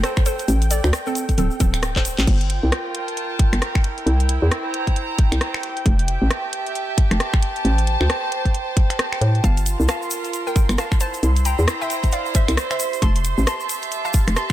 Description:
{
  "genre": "UK garage, two-step garage",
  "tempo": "134 BPM",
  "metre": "4/4",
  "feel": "swing 60% on 16ths",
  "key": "G dorian",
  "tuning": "A4 = 437 Hz",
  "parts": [
    { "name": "hollow square pluck", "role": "melody", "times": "0.0-2.2, 9.4-14.5 s", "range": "C4 to C6", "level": "-27 LUFS", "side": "equal", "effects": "analog chorus, cassette tape, ping-pong delay" },
    { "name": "warm analog pad", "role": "sustained chords", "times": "0.0-14.5 s", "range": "G5 to C6", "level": "-30 LUFS", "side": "right 2 dB", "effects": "chorus, sidechain pumping" },
    { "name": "hollow knocking FM bass", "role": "bass", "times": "0.0-14.3 s", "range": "D1 to A2", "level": "-18 LUFS", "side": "equal", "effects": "none" },
    { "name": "garage drum kit", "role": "drums", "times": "0.0-14.5 s", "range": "crash cymbal, finger snaps, handclaps, hi-hat, rim click", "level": "-26 LUFS", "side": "equal", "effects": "none" },
    { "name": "egg shaker", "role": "percussion", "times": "0.0-2.3, 9.4-14.5 s", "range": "none", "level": "-32 LUFS", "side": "equal", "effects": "none" },
    { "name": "electronic kick drum", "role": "drums", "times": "0.2-14.5 s", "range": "none", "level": "-18 LUFS", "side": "equal", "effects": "none" },
    { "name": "rich chamber string section", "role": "texture", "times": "2.3-14.5 s", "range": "E4 to Bb5", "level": "-28 LUFS", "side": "right 2 dB", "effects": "sidechain pumping" }
  ],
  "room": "light reverb",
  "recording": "none",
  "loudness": "-18 LUFS",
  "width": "side -13 dB against mid",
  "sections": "0.0-2.3 A section; 2.3-14.5 A section",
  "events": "drop 0.0-2.3, 2.3-14.5; drum fill 1.9-2.3",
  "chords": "0.3 Am7; 1.4 D7sus4; 2.3 Gm9; 3.8 C7; 5.6 Fmaj9; 7.4 Am7; 9.4 Gm9; 11.0 C7; 12.8 Fmaj9",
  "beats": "0.04 | 0.48 0.93 1.38 1.83 | 2.27 2.72 3.17 3.62 | 4.07 4.51 4.96 5.41 | 5.86 6.30 6.75 7.20 | 7.65 8.10 8.54 8.99 | 9.44 9.89 10.33 10.78 | 11.23 11.68 12.12 12.57 | 13.02 13.47 13.92 14.36"
}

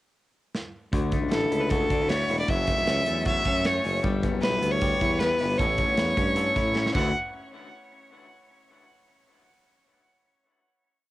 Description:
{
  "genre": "jangly indie pop",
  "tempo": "154 BPM",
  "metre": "4/4",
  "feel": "straight",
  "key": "D major",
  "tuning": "A4 = 440 Hz",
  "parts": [
    { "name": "modern studio drum kit", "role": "drums", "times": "0.5-7.0 s", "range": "crash cymbal, hi-hat, kick drum, snare drum", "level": "-30 LUFS", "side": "right 1 dB", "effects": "cassette tape" },
    { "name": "electric guitar through a small old amp", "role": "arpeggios", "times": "0.9-7.1 s", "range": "F#2 to A4", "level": "-29 LUFS", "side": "left 4 dB", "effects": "cassette tape" },
    { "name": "warm tuba", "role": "bass", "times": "0.9-7.1 s", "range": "E1 to A2", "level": "-29 LUFS", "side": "right 1 dB", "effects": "none" },
    { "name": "bright violin", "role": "melody", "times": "1.3-7.1 s", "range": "A4 to F#5", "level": "-26 LUFS", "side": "right 1 dB", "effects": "cassette tape" }
  ],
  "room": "light reverb",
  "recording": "home recording on cassette",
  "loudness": "-22 LUFS",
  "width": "side -16 dB against mid",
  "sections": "0.0-0.9 pickup bar; 0.9-7.1 verse; 7.1-8.7 final hit",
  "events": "drum fill 0.5-0.9, 6.8-7.1",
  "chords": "0.0 N.C.; 0.9 Dadd9; 2.5 F#m7; 4.0 Em; 5.6 A; 7.0 Dadd9; 7.1 N.C.",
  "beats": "0.15 0.54 | 0.93 1.32 1.71 2.10 | 2.49 2.88 3.27 3.65 | 4.04 4.43 4.82 5.21 | 5.59 5.98 6.37 6.76"
}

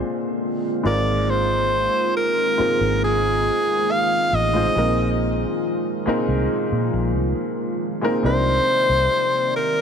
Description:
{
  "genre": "contemporary R&B",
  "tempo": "69 BPM",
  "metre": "4/4",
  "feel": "straight",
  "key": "unclear",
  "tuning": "A4 = 440 Hz",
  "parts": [
    { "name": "warm baby grand piano", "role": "accompaniment", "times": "0.0-9.8 s", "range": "Ab2 to C5", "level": "-25 LUFS", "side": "equal", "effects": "none" },
    { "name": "glassy FM pad", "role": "sustained chords", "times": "0.0-9.8 s", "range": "C3 to D5", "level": "-25 LUFS", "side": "equal", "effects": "ensemble chorus, built-in reverb" },
    { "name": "bright alto saxophone", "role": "melody", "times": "0.9-9.8 s", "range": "Ab4 to F5", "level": "-20 LUFS", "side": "equal", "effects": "ping-pong delay" },
    { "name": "vintage muted fingered electric bass", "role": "bass", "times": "0.9-9.1 s", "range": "Ab1 to Bb2", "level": "-23 LUFS", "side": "equal", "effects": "none" }
  ],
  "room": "light reverb, studio reverb",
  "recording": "none",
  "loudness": "-18 LUFS",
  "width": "side -7 dB against mid",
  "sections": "0.0-8.2 A section; 8.2-9.8 B section",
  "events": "break 7.4-8.2",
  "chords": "0.0 Bb9; 0.9 Ab69; 4.8 Bb7sus4; 8.2 Cm9",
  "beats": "0.42 | 1.29 2.16 3.03 3.90 | 4.76 5.63 6.50 7.37 | 8.24 9.11"
}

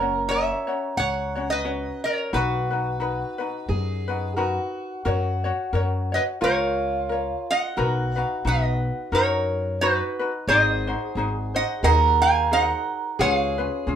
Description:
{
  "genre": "Hawaiian",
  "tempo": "88 BPM",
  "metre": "4/4",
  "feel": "swing 57% on 8ths",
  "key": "B major, F# major from 5.1 s",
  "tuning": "A4 = 442 Hz",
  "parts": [
    { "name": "lap resonator guitar", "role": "melody", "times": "0.0-14.0 s", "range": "F#4 to G#5", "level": "-24 LUFS", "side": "equal", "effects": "none" },
    { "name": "fingerpicked steel-string acoustic guitar", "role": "second line", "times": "0.0-14.0 s", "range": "E#4 to A#4", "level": "-27 LUFS", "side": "right 4 dB", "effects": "none" },
    { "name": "ukulele", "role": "accompaniment", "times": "0.0-14.0 s", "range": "C#4 to C#5", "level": "-28 LUFS", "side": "left 3 dB", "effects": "none" },
    { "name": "upright bass", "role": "bass", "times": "0.0-14.0 s", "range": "F#1 to F#2", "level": "-26 LUFS", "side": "left 1 dB", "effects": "none" }
  ],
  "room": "wet studio reverb, RT60 0.5 s",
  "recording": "band playing live in one room",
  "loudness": "-21 LUFS",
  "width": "side -9 dB against mid",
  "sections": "0.0-5.1 A section; 5.1-14.0 B section",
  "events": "none",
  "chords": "0.0 F#; 2.3 Bmaj7; 5.1 F#maj7; 7.8 Bmaj7; 10.5 G#7; 13.2 C#7",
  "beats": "0.29 0.97 1.65 | 2.33 3.02 3.70 4.38 | 5.06 5.74 6.42 7.09 | 7.77 8.45 9.13 9.80 | 10.48 11.16 11.84 12.51 | 13.19 13.87"
}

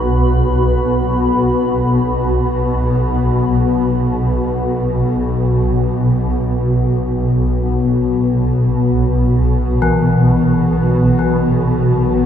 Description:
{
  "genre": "dark ambient drone",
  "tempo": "free time",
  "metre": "none",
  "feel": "none",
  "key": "unclear",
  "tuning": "A4 = 441 Hz",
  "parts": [
    { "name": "granular cloud pad", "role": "sustained chords", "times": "0.0-3.0 s", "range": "B3 to B5", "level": "-22 LUFS", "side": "right 1 dB", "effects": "built-in reverb, lush chorus" },
    { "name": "swarming drone", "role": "drone", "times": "0.0-12.3 s", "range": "B1 to B2", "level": "-14 LUFS", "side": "equal", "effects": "built-in reverb, analog chorus" },
    { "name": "bronze singing bowl", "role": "texture", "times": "0.0-3.0 s", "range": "F#4", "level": "-33 LUFS", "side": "left 1 dB", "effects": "none" },
    { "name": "gamelan-type bronze metallophone", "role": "arpeggios", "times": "9.8-12.3 s", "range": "E3", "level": "-18 LUFS", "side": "left 1 dB", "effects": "ping-pong delay" }
  ],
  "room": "wet huge ambient reverb, RT60 8.7 s",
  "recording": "dreamy mix soaked in reverb",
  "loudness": "-13 LUFS",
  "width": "side -9 dB against mid",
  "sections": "0.0-3.0 A section; 3.0-12.3 B section",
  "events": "filter sweep on synth drone 0.0-3.0",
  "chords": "0.0 B5",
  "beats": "free time"
}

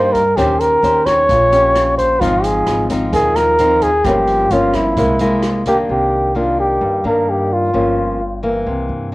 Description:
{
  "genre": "bossa nova",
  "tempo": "130 BPM",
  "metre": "4/4",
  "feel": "straight",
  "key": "C minor from 5.9 s",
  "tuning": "A4 = 439 Hz",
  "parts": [
    { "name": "breathy flugelhorn", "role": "melody", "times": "0.0-8.4 s", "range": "E4 to Db5", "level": "-14 LUFS", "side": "equal", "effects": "plate reverb" },
    { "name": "nylon-string guitar", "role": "accompaniment", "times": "0.0-9.1 s", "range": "G2 to C5", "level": "-18 LUFS", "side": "left 1 dB", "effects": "cassette tape" },
    { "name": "upright bass", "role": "bass", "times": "0.0-9.1 s", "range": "G1 to G2", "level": "-23 LUFS", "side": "equal", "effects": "none" },
    { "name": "open jazz drum kit", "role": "drums", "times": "0.1-5.8 s", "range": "hi-hat, kick drum, rim click", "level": "-27 LUFS", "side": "right 1 dB", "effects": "cassette tape" }
  ],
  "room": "moderate studio reverb, RT60 0.6 s",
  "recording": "home recording on cassette",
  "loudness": "-12 LUFS",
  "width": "side -20 dB against mid",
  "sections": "0.0-5.9 A section; 5.9-9.1 B section",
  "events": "none",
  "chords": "0.4 Eb6; 2.2 Ab6; 4.0 Gm7b5; 5.0 C7b13; 5.9 Cm9; 7.7 Gm7b5",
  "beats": "| 0.37 0.83 1.29 1.75 | 2.21 2.67 3.13 3.59 | 4.05 4.51 4.97 5.43 | 5.89 6.35 6.81 7.27 | 7.74 8.20 8.66 9.12"
}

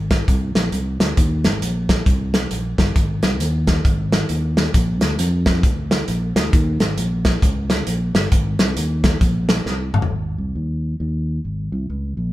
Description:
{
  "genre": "uptempo gospel",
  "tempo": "134 BPM",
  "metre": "4/4",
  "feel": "swing 61% on 8ths",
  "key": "Ab major",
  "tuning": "A4 = 440 Hz",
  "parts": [
    { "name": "fingered electric bass", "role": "bass", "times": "0.0-12.3 s", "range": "G1 to F2", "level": "-21 LUFS", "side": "equal", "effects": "none" },
    { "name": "warm soul drum kit", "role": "drums", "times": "0.1-10.1 s", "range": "hi-hat, kick drum, snare drum, toms", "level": "-18 LUFS", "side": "equal", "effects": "none" }
  ],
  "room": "moderate stone room reverb, RT60 1.3 s",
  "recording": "band playing live in one room",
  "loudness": "-17 LUFS",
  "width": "side -16 dB against mid",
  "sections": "0.0-10.1 A section; 10.1-12.3 B section",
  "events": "drum fill 9.7-10.1",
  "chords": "none",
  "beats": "0.28 0.73 | 1.17 1.62 2.06 2.51 | 2.96 3.40 3.85 4.29 | 4.74 5.19 5.63 6.08 | 6.53 6.97 7.42 7.87 | 8.32 8.76 9.21 9.66 | 10.11 10.55 11.00 11.45 | 11.90"
}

